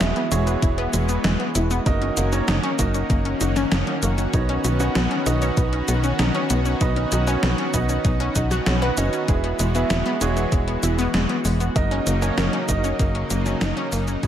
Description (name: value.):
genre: synthwave.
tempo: 97 BPM.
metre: 4/4.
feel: straight.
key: B major.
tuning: A4 = 440 Hz.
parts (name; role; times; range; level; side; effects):
lush unison pad; sustained chords; 0.0-14.3 s; C#3 to F#4; -27 LUFS; equal; chorus, sidechain pumping.
analog pluck; arpeggios; 0.0-14.3 s; G#3 to B4; -27 LUFS; left 3 dB; chorus, ping-pong delay.
clear grand piano; stabs; 0.0-14.3 s; D#4 to F#5; -28 LUFS; right 6 dB; ping-pong delay.
tight sequencer bass; bass; 0.0-14.3 s; E1 to B1; -23 LUFS; equal; none.
gated 80s digital drum machine; drums; 0.0-14.3 s; hi-hat, shaker, snare drum; -26 LUFS; equal; gated reverb, gated reverb snare, overdrive.
electronic kick drum; drums; 0.6-14.3 s; none; -22 LUFS; equal; overdrive.
room: light reverb.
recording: none.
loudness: -19 LUFS.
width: side -10 dB against mid.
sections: 0.0-14.3 A section.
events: fade-out 12.6-14.3.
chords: 0.0 Eadd9; 1.9 F#6; 4.3 Badd9; 9.3 Eadd9; 11.8 F#6.